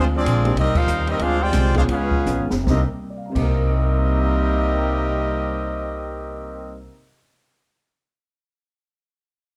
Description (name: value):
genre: jazz, big band swing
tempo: 142-202 BPM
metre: 4/4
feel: swing 61% on 8ths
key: C minor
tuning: A4 = 440 Hz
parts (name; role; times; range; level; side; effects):
- clear trumpet section; melody; 0.0-6.8 s; C4 to G5; -27 LUFS; equal; none
- clear trombone section; second line; 0.0-6.8 s; C3 to G4; -29 LUFS; equal; none
- dark baby grand piano; accompaniment; 0.0-7.2 s; C3 to D7; -32 LUFS; equal; none
- vintage hollow-body jazz guitar; accompaniment; 0.0-7.0 s; C3 to F4; -35 LUFS; equal; none
- upright bass; bass; 0.0-6.9 s; F1 to Eb2; -24 LUFS; equal; none
- open jazz drum kit; drums; 0.3-3.4 s; crash cymbal, hi-hat, kick drum, ride cymbal, snare drum; -28 LUFS; equal; none
room: light reverb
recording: dark, warm production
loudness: -21 LUFS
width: mono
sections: 0.0-2.7 A section; 2.7-6.1 B section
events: slowing down 0.0-2.7; band accent 0.7; drum fill 2.3-2.7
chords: 0.0 Dm7b5; 0.6 Cm7; 1.2 Dm7b5; 1.9 Db7; 2.7 Cm7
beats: 0.26 0.56 0.88 | 1.20 1.53 1.89 2.27 | 2.67 3.10 3.52 3.94 | 4.37 4.79 5.21 5.63